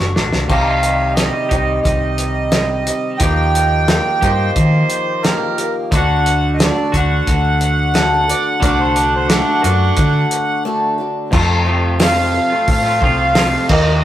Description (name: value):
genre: folk rock and heartland rock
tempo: 89 BPM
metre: 4/4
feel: straight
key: unclear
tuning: A4 = 439 Hz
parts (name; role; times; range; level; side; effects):
- picked acoustic archtop guitar; accompaniment; 0.0-14.0 s; C3 to Bb4; -22 LUFS; left 1 dB; none
- twangy electric guitar; riff; 0.0-14.0 s; F2 to G4; -22 LUFS; equal; none
- hollow-body short-scale fingered electric bass; bass; 0.0-14.0 s; F#1 to Eb3; -18 LUFS; equal; none
- cloth-damped thuddy drum kit; drums; 0.2-13.9 s; crash cymbal, hi-hat, kick drum, snare drum; -18 LUFS; equal; none
- accordion; melody; 0.5-14.0 s; D5 to G5; -18 LUFS; right 1 dB; none
- overdriven harmonica; second line; 4.2-10.3 s; F3 to D5; -21 LUFS; right 2 dB; none
- tonewheel organ; sustained chords; 11.3-14.0 s; Eb4 to C5; -31 LUFS; left 2 dB; none
- tambourine; percussion; 12.0-13.5 s; none; -33 LUFS; right 5 dB; none
room: moderate stone room reverb, RT60 1.1 s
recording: rough rehearsal-room recording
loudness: -13 LUFS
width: side -12 dB against mid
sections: 0.5-11.3 A section; 11.3-14.0 B section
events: drum fill 0.0-0.5; break 10.7-11.3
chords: 0.5 Cm; 3.2 Ebadd9; 5.9 D; 11.3 F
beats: | 0.50 1.18 1.85 2.53 | 3.21 3.89 4.56 5.24 | 5.92 6.59 7.27 7.95 | 8.63 9.30 9.98 10.66 | 11.34 12.01 12.69 13.37